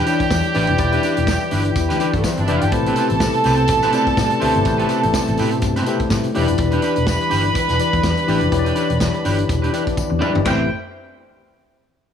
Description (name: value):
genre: disco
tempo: 124 BPM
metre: 4/4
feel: swing 56% on 16ths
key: A minor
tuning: A4 = 440 Hz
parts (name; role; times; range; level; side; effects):
- warm studio violin section; second line; 0.0-10.7 s; A3 to B5; -21 LUFS; right 2 dB; none
- electric guitar at the edge of break-up; accompaniment; 0.0-10.6 s; C4 to B4; -25 LUFS; right 3 dB; none
- tine electric piano; accompaniment; 0.0-10.7 s; E3 to D5; -22 LUFS; left 8 dB; medium stereo tremolo
- percussive tonewheel organ; sustained chords; 0.0-10.7 s; B2 to G4; -27 LUFS; right 2 dB; chorus vibrato, slow rotary speaker
- vintage drum kit; drums; 0.1-10.6 s; hi-hat, kick drum, ride cymbal, snare drum, toms; -24 LUFS; equal; none
- tambourine; percussion; 0.1-10.7 s; none; -37 LUFS; left 10 dB; none
- vintage muted fingered electric bass; bass; 0.3-10.7 s; E1 to A2; -21 LUFS; equal; none
room: light reverb, studio reverb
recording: none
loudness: -16 LUFS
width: side -8 dB against mid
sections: 0.0-10.5 A section; 10.5-12.1 B section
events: drum fill 10.0-10.5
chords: 0.0 Em7; 2.7 Am9; 6.4 Em7; 10.5 Am9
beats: 0.31 | 0.79 1.28 1.76 2.24 | 2.73 3.21 3.69 4.17 | 4.66 5.14 5.62 6.11 | 6.59 7.08 7.56 8.04 | 8.53 9.01 9.49 9.98 | 10.46